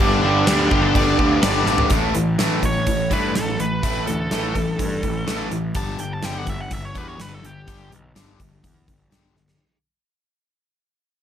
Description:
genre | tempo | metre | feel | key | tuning
classic rock | 125 BPM | 4/4 | straight | unclear | A4 = 441 Hz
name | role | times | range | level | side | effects
nasal lead guitar with a parked wah | melody | 0.0-7.9 s | D4 to A5 | -26 LUFS | equal | overdrive, slapback echo
crunchy overdriven guitar | riff | 0.0-9.6 s | G2 to G4 | -24 LUFS | left 6 dB | none
raw garage guitar | riff | 0.0-5.7 s | G2 to A3 | -24 LUFS | right 8 dB | overdrive
fuzz picked electric bass | bass | 0.0-9.6 s | G1 to G2 | -26 LUFS | right 1 dB | overdrive
gated 80s drum kit | drums | 0.0-9.6 s | crash cymbal, hi-hat, kick drum, snare drum, toms | -24 LUFS | equal | none
cranked stack guitar | second line | 0.7-1.8 s | G4 to D5 | -26 LUFS | left 4 dB | overdrive, spring reverb
room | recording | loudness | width
moderate large studio reverb, RT60 0.8 s | none | -18 LUFS | side -9 dB against mid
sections
0.0-1.9 A section; 1.9-9.6 B section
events
drum fill 1.7, 9.4; fade-out 1.9-9.6; lead electric guitar solo 1.9-9.6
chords
0.0 G; 1.9 A5; 5.7 G5

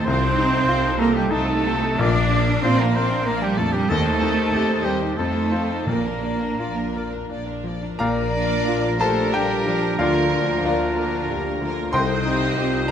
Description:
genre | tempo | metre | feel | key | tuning
classical, romantic movement for piano and orchestra | 82-97 BPM | 3/4 | rubato | Bb major | A4 = 440 Hz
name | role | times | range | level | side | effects
clear grand piano | melody | 0.0-12.9 s | Bb1 to C6 | -24 LUFS | left 4 dB | none
clear symphonic violin section | melody | 0.0-12.9 s | G4 to Eb5 | -35 LUFS | left 3 dB | none
clear clarinet | second line | 0.0-12.9 s | D4 to D5 | -29 LUFS | left 1 dB | none
mellow hollow silver concert flute | second line | 0.0-12.2 s | G5 to D6 | -29 LUFS | equal | none
warm oboe | second line | 0.0-12.1 s | G4 to Eb5 | -32 LUFS | right 2 dB | none
warm symphonic violin section | second line | 0.0-12.9 s | D4 to Eb5 | -32 LUFS | left 1 dB | none
rich symphonic viola section | accompaniment | 0.0-12.9 s | Bb3 to F4 | -31 LUFS | right 3 dB | none
clear symphonic cello section | bass | 0.0-12.8 s | D3 to D4 | -26 LUFS | right 4 dB | none
mellow French horn section | sustained chords | 0.1-12.9 s | D4 to C5 | -30 LUFS | left 5 dB | none
warm symphonic double bass section | bass | 0.1-12.9 s | Bb1 to F2 | -29 LUFS | right 3 dB | none
timpani | percussion | 5.9-6.9 s | Bb2 | -31 LUFS | right 2 dB | none
clear trombone section | sustained chords | 8.0-12.9 s | F3 to Eb4 | -31 LUFS | right 5 dB | none
clear trumpet | stabs | 8.0-12.9 s | Bb4 to C5 | -29 LUFS | right 4 dB | none
room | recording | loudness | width
moderate scoring stage reverb, RT60 2.0 s | none | -19 LUFS | side -8 dB against mid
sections
0.0-8.0 A section; 8.0-12.9 B section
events
none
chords
0.1 F7/C; 2.0 Bb; 3.9 Cm/Eb; 5.2 F7; 5.9 Bb; 10.0 Bb/D; 11.9 Cm

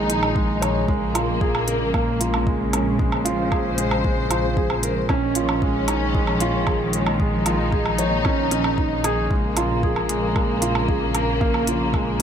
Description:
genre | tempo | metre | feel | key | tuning
piano and strings electronica | 114 BPM | 4/4 | straight | Bb minor | A4 = 439 Hz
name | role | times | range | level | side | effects
dark symphonic string section | sustained chords | 0.0-12.2 s | Db3 to C5 | -25 LUFS | left 2 dB | sidechain pumping
felt-muted upright piano | riff | 0.0-12.2 s | Ab3 to Db5 | -23 LUFS | right 2 dB | digital delay
dark detuned saw bass | bass | 0.0-12.2 s | Bb1 | -26 LUFS | equal | sidechain pumping
electronic hi-hat and woodblock | drums | 0.1-12.2 s | none | -27 LUFS | right 2 dB | overdrive
electronic kick drum | drums | 0.4-12.0 s | none | -24 LUFS | equal | overdrive
room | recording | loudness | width
light reverb | none | -19 LUFS | side -8 dB against mid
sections
0.0-12.2 A section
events
none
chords
0.0 Dbadd9/Bb; 0.9 Bbm7; 5.1 Dbadd9/Bb; 9.3 Bbm7

